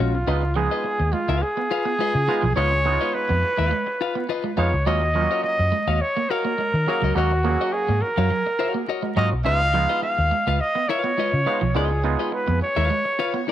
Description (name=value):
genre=funk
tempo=105 BPM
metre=4/4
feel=straight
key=unclear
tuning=A4 = 440 Hz
part: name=warm trumpet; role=melody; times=0.0-13.5 s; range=E#4 to E#5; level=-23 LUFS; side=equal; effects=tape echo
part: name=clean electric guitar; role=accompaniment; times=0.0-13.5 s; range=C#4 to E#5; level=-28 LUFS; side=left 9 dB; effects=none
part: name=clean electric guitar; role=riff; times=0.0-13.5 s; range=E#3 to C#4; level=-29 LUFS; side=right 7 dB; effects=none
part: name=vintage muted fingered electric bass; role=bass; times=0.0-12.9 s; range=A#1 to D#3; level=-22 LUFS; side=equal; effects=none
part: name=auto-wah clav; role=stabs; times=0.3-12.7 s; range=E#3 to G#4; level=-29 LUFS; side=right 8 dB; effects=none
room=light reverb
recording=1960s-style stereo with parts hard left and right, vinyl crackle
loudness=-19 LUFS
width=side -11 dB against mid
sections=0.3-13.5 A section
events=none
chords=0.3 C#9; 4.9 D#m7; 9.5 C#9